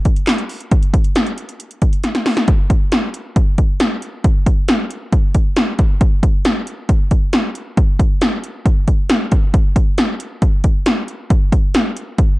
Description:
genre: pop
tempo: 136 BPM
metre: 4/4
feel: straight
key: none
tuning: none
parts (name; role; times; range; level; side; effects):
- 80s electronic pad drums; drums; 0.1-12.3 s; handclaps, hi-hat, kick drum, snare drum; -14 LUFS; equal; none
room: light reverb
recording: dark, warm production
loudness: -14 LUFS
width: side -20 dB against mid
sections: 0.0-2.5 A section; 2.5-12.4 B section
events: drum fill 2.0-2.5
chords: none

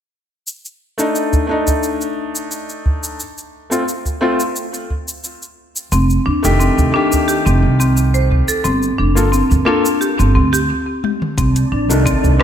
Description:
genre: organic downtempo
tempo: 88 BPM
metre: 4/4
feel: straight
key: unclear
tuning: A4 = 440 Hz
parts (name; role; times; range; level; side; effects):
- afro-pop drum kit; drums; 0.5-12.4 s; cabasa, hi-hat, rim click, toms; -25 LUFS; left 2 dB; gated reverb
- felt-muted upright piano; accompaniment; 1.0-12.4 s; Eb3 to A4; -19 LUFS; left 1 dB; sidechain pumping, low-pass filter, digital delay
- udu; percussion; 1.3-12.4 s; none; -18 LUFS; equal; none
- marimba with medium hard mallets; arpeggios; 5.9-12.4 s; C4 to C5; -17 LUFS; left 1 dB; digital delay
- upright bass; bass; 5.9-12.4 s; F1 to Eb2; -15 LUFS; right 1 dB; sidechain pumping
- electronic kick drum; drums; 11.4-12.2 s; none; -20 LUFS; right 1 dB; none
- wind-like tuned noise texture; texture; 11.5-12.4 s; D4 to D5; -24 LUFS; right 3 dB; built-in reverb, wide subtle chorus
room: moderate plate reverb, RT60 1.9 s, studio ambience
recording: bright 1980s-style digital production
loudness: -14 LUFS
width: side -9 dB against mid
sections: 0.5-11.4 A section; 11.4-12.4 B section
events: stop 10.7-11.4; drum fill 11.0-11.4; filter sweep on felt piano 11.4-12.4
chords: 0.5 Asus4; 3.2 Am; 5.9 F7; 8.7 G7(no3); 11.4 Cm69

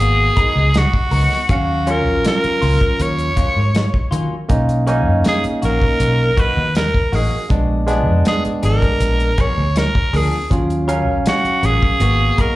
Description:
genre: straight-eighth soul blues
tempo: 80 BPM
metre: 4/4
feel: straight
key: Eb minor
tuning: A4 = 440 Hz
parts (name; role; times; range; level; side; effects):
- raspy tenor saxophone; melody; 0.0-12.6 s; Gb4 to Db5; -19 LUFS; equal; slapback echo
- barky tine electric piano; accompaniment; 0.0-12.6 s; Gb3 to F5; -20 LUFS; right 1 dB; none
- vintage muted fingered electric bass; bass; 0.0-12.3 s; Ab1 to Eb3; -17 LUFS; equal; none
- clean electric guitar; stabs; 0.4-12.6 s; F3 to Bb4; -28 LUFS; left 4 dB; phaser, slapback echo, tape echo
- warm soul drum kit; drums; 0.4-12.6 s; hi-hat, kick drum, snare drum; -19 LUFS; equal; none
room: small room ambience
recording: live gig heard through the venue's PA, club reverb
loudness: -14 LUFS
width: side -17 dB against mid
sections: 0.0-12.6 A section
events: none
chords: 0.0 Abm9; 1.5 Ebm9; 4.5 Bmaj7; 7.5 Bb7b9; 10.5 Ebm9; 12.0 Abm9

